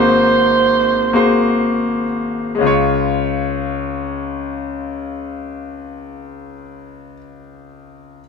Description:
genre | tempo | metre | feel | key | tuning
gospel | 39-45 BPM (dotted quarters) | 6/8 | straight | Db major | A4 = 441 Hz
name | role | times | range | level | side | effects
breathy alto saxophone | melody | 0.0-1.6 s | C5 | -14 LUFS | right 5 dB | none
clear concert grand piano | accompaniment | 0.0-8.2 s | Ab1 to Db5 | -17 LUFS | left 3 dB | none
room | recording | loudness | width
moderate stone room reverb, RT60 1.1 s | band playing live in one room | -15 LUFS | side -5 dB against mid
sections
0.0-2.6 A section; 2.6-5.7 B section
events
slowing down 0.0-2.6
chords
0.0 Ab9; 2.6 Db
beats
1.14 | 2.60 4.15

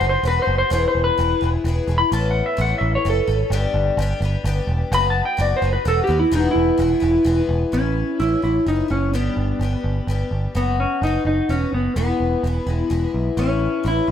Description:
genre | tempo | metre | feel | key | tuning
folk rock and heartland rock | 128 BPM | 3/4 | straight | A lydian | A4 = 439 Hz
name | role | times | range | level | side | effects
clean lap steel guitar | melody | 0.0-14.1 s | B3 to B5 | -21 LUFS | equal | none
picked twelve-string acoustic guitar | accompaniment | 0.0-14.1 s | E2 to A4 | -24 LUFS | left 6 dB | none
picked electric bass | bass | 0.0-14.1 s | E1 to D#2 | -21 LUFS | right 1 dB | none
room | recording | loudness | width
light reverb, studio reverb | none | -17 LUFS | side -9 dB against mid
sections
0.0-7.7 A section; 7.7-14.1 B section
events
electric slide guitar solo 0.0-7.7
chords
0.0 B/F#; 0.7 E; 2.1 Aadd9; 3.5 G; 4.9 B/F#; 6.3 E; 7.7 Aadd9; 9.1 G; 10.6 B/F#; 12.0 E; 13.4 Aadd9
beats
0.25 | 0.72 1.18 1.65 | 2.12 2.58 3.05 | 3.52 3.98 4.45 | 4.92 5.38 5.85 | 6.32 6.79 7.26 | 7.73 8.20 8.67 | 9.14 9.61 10.08 | 10.55 11.02 11.49 | 11.96 12.44 12.91 | 13.38 13.85

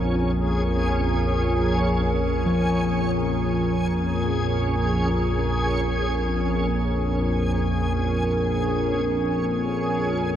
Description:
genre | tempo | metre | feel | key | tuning
dark ambient drone | free time | none | none | unclear | A4 = 440 Hz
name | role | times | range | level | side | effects
deep dark ambient pad | sustained chords | 0.0-10.4 s | Bb3 to Db5 | -27 LUFS | right 1 dB | chorus, built-in reverb
gamelan-type bossed gongs | arpeggios | 0.0-9.4 s | F3 to Bb4 | -32 LUFS | left 3 dB | none
analog drone | drone | 0.0-10.4 s | Bb1 to F2 | -24 LUFS | equal | chorus, phaser
backwards swelling texture | texture | 0.0-10.4 s | Db4 to Ab4 | -27 LUFS | equal | built-in reverb
room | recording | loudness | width
wet cathedral reverb, RT60 6.0 s | worn, warbling old tape, cassette tape, warbly pitch drift | -21 LUFS | side -10 dB against mid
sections
0.0-10.4 A section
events
none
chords
0.0 Bbm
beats
free time

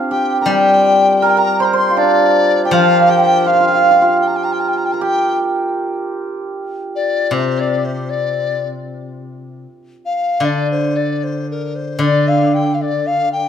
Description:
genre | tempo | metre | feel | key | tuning
chinese traditional, Chinese chamber ensemble | 75-81 BPM | 2/4 | rubato | G yu mode | A4 = 440 Hz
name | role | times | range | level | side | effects
hammered dulcimer | second line | 0.0-8.2 s | C4 to C5 | -16 LUFS | right 5 dB | none
mellow hollow large dizi | melody | 0.1-13.5 s | Bb4 to C6 | -17 LUFS | left 3 dB | none
steel-string zither | accompaniment | 0.5-5.0, 7.3-13.5 s | C3 to G3 | -17 LUFS | left 2 dB | none
room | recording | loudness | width
moderate recital hall reverb, RT60 1.6 s | minimal, uncompressed stereo recording | -13 LUFS | side -8 dB against mid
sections
0.0-5.8 A section; 5.8-13.5 B section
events
none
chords
none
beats
0.47 | 1.23 1.98 | 2.72 3.46 | 4.21 4.97 | 5.76 6.55 | 7.33 8.10 | 8.87 9.65 | 10.43 11.22 | 12.02 12.81

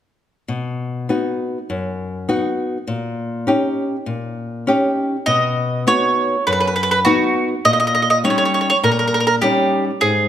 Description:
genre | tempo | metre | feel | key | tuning
italian folk, Italian serenade | 101 BPM | 4/4 | straight | B major | A4 = 441 Hz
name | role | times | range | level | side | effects
nylon-string guitar | accompaniment | 0.5-10.3 s | F#2 to G4 | -19 LUFS | left 2 dB | none
mandolin | melody | 5.3-10.3 s | F#4 to D#5 | -16 LUFS | right 2 dB | none
room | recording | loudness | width
moderate recital hall reverb, RT60 1.6 s | none | -16 LUFS | side -10 dB against mid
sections
0.5-5.3 A section; 5.3-10.3 B section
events
none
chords
0.5 B; 2.9 D#7/A#; 5.3 B; 7.7 D#7/A#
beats
| 0.48 1.09 1.69 2.29 | 2.89 3.48 4.08 4.68 | 5.28 5.88 6.47 7.07 | 7.66 8.25 8.84 9.43 | 10.02

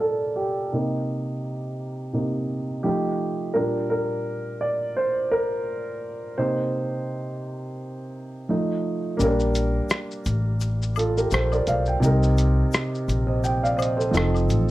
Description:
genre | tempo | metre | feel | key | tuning
lo-fi hip hop | 85 BPM | 4/4 | swing 57% on 16ths | unclear | A4 = 439 Hz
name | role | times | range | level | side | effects
warm upright piano | accompaniment | 0.0-14.7 s | Bb2 to G5 | -24 LUFS | right 1 dB | cassette tape, low-pass filter
upright bass | bass | 9.2-14.7 s | F1 to C2 | -22 LUFS | left 1 dB | none
lo-fi sampler-style drum kit | drums | 9.2-14.7 s | hi-hat, rim click, shaker | -28 LUFS | left 1 dB | none
egg shaker and woodblock | percussion | 9.2-14.7 s | none | -37 LUFS | left 8 dB | none
room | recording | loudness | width
light reverb | cassette tape | -22 LUFS | side -16 dB against mid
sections
0.0-9.2 A section; 9.2-14.7 B section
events
upright piano solo 0.0-9.2; filter sweep on upright piano 0.0-9.2; kick muted 9.2-14.7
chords
0.0 Bb6; 0.7 Cm7; 2.8 F7; 3.5 Bb6; 6.4 Cm7; 8.5 F7; 9.2 Bb6; 12.0 Cm7; 14.1 F7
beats
0.02 | 0.72 1.43 2.13 2.84 | 3.55 4.25 4.96 5.67 | 6.37 7.08 7.78 8.49 | 9.19 9.90 10.61 11.31 | 12.02 12.72 13.43 14.13

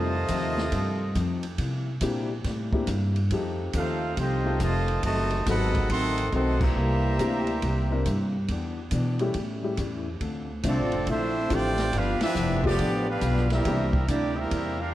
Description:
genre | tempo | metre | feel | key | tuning
jazz, big band swing | 139 BPM | 4/4 | swing 65% on 8ths | C major | A4 = 441 Hz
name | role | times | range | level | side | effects
brilliant trumpet section | melody | 0.0-14.9 s | Bb3 to C6 | -30 LUFS | right 2 dB | none
warm trombone section | second line | 0.0-14.9 s | C3 to G4 | -30 LUFS | right 1 dB | none
picked steel-string acoustic guitar | accompaniment | 0.0-14.8 s | G2 to A4 | -34 LUFS | left 4 dB | none
warm baby grand piano | accompaniment | 0.0-13.9 s | E3 to E5 | -32 LUFS | left 3 dB | none
upright bass | bass | 0.0-14.9 s | F1 to C3 | -28 LUFS | equal | none
open jazz drum kit | drums | 0.3-14.6 s | crash cymbal, hi-hat, kick drum, ride cymbal, snare drum | -34 LUFS | right 1 dB | none
room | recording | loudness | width
moderate scoring stage reverb, RT60 1.9 s | worn, warbling old tape, cassette tape, warbly pitch drift | -24 LUFS | side -14 dB against mid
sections
0.0-14.9 A section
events
band accent 6.5, 12.1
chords
0.0 F7; 1.6 C7; 3.3 F7; 5.0 F#dim7; 6.8 C7; 8.5 Em7; 9.3 A7; 10.2 Dm7; 11.9 G7; 13.7 C7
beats
0.28 0.72 1.15 | 1.58 2.01 2.44 2.88 | 3.31 3.74 4.17 4.60 | 5.03 5.46 5.90 6.33 | 6.76 7.19 7.62 8.05 | 8.48 8.91 9.35 9.78 | 10.21 10.64 11.07 11.50 | 11.93 12.36 12.79 13.22 | 13.65 14.08 14.51

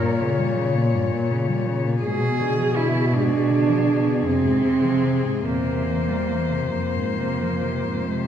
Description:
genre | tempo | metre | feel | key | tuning
classical, lyrical piece for cello ensemble | 44-56 BPM (dotted quarters) | 12/8 | rubato | F minor | A4 = 441 Hz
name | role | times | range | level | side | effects
dark cello | melody | 0.0-8.3 s | G#4 to Db5 | -28 LUFS | left 8 dB | none
dark cello | second line | 0.0-8.3 s | Ab3 to Bb4 | -23 LUFS | right 5 dB | none
warm cello | accompaniment | 0.0-8.3 s | F2 to G3 | -25 LUFS | left 3 dB | none
warm cello | bass | 0.0-8.3 s | E2 to C3 | -25 LUFS | equal | none
room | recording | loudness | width
wet recital hall reverb, RT60 1.7 s | heard from further back in the room | -19 LUFS | side -9 dB against mid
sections
0.0-8.3 A section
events
none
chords
0.0 Gdim; 2.0 Bdim7/G#; 4.2 Fm; 5.5 C7/E; 6.7 Fm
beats
0.94 | 2.04 3.13 4.25 5.46 | 6.74 8.08

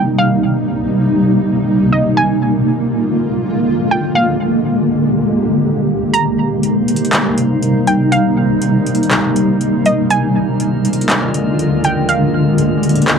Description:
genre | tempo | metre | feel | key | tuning
hip hop, atmospheric cloud-rap | 121 BPM | 4/4 | half-time | C minor | A4 = 440 Hz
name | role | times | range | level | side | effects
warbly dusty pluck | melody | 0.0-13.2 s | Eb5 to Bb5 | -18 LUFS | right 2 dB | chorus, analog delay
granular cloud pad | sustained chords | 0.0-13.2 s | C3 to G4 | -13 LUFS | equal | built-in reverb
booming analog drum machine | drums | 6.1-13.2 s | handclaps, hi-hat | -18 LUFS | equal | overdrive
drifting glass-harmonics texture | texture | 6.6-13.2 s | Ab3 to C5 | -24 LUFS | equal | chorus, built-in reverb
room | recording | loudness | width
moderate booth ambience, RT60 0.2 s | dark, warm production | -12 LUFS | side -6 dB against mid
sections
0.0-13.2 A section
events
kick muted 6.1-13.2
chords
0.0 Cm7; 2.2 Bb7; 6.1 Cm7; 10.1 Bb7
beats
| 0.19 0.68 1.18 1.67 | 2.17 2.67 3.16 3.66 | 4.15 4.65 5.14 5.64 | 6.14 6.63 7.13 7.62 | 8.12 8.62 9.11 9.61 | 10.10 10.60 11.10 11.59 | 12.09 12.58 13.08

